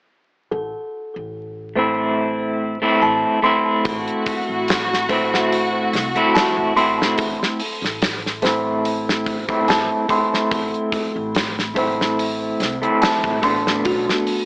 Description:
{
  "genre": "trip hop",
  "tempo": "72 BPM",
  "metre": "4/4",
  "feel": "swing 54% on 16ths",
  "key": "A dorian",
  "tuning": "A4 = 435 Hz",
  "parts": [
    { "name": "music box", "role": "arpeggios", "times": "0.5-14.2 s", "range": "F#4 to C6", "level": "-23 LUFS", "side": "equal", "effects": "low-pass filter, tape echo" },
    { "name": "upright bass", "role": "bass", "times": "0.5-14.0 s", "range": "A1 to C2", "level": "-35 LUFS", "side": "equal", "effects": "none" },
    { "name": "electric guitar at the edge of break-up", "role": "accompaniment", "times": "1.8-14.5 s", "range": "A3 to E4", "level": "-20 LUFS", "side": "equal", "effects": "tremolo, vintage 12-bit sampler grit, low-pass filter" },
    { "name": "warm studio violin section", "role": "sustained chords", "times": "3.8-7.2 s", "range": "F#4", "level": "-22 LUFS", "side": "equal", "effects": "none" },
    { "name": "gated 80s drum kit", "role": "drums", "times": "3.9-14.5 s", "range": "hi-hat, kick drum, snare drum", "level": "-22 LUFS", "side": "equal", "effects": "none" }
  ],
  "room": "light reverb",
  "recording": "vinyl crackle, AM radio sound",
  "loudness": "-17 LUFS",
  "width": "side -27 dB against mid",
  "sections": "0.5-7.2 A section; 7.2-14.5 B section",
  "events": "filter sweep on music box 0.5-7.2; kick drops out 5.5-7.2; filter sweep on clean electric guitar 7.2-14.5",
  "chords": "0.5 Am; 13.8 Bm7"
}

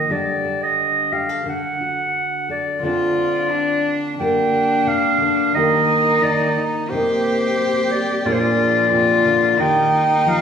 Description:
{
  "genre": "acoustic folk-pop ballad",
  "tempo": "88 BPM",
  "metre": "4/4",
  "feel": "straight",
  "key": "unclear",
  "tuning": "A4 = 437 Hz",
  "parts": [
    { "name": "warm clarinet", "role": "melody", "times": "0.0-10.4 s", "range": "C5 to G5", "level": "-19 LUFS", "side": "equal", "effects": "none" },
    { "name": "nylon-string guitar", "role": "accompaniment", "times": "0.0-10.4 s", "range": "Bb2 to Bb4", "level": "-22 LUFS", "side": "equal", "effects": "none" },
    { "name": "warm cello", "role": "second line", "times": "2.8-10.4 s", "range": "D4 to G4", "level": "-22 LUFS", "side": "left 2 dB", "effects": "none" },
    { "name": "brassy analog pad", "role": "sustained chords", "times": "8.2-10.4 s", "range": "Eb3 to Bb4", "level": "-27 LUFS", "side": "right 2 dB", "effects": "chorus" }
  ],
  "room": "wet recital hall reverb, RT60 1.4 s",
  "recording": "recorded in a church or concert hall",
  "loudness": "-16 LUFS",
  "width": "side -7 dB against mid",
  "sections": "0.0-2.8 A section; 2.8-10.4 B section",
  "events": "none",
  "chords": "0.1 Dsus4; 1.4 D; 2.8 Dm7; 4.2 Bb6/D; 5.5 Eb; 6.9 Cm7; 8.3 Bb7; 9.6 Eb"
}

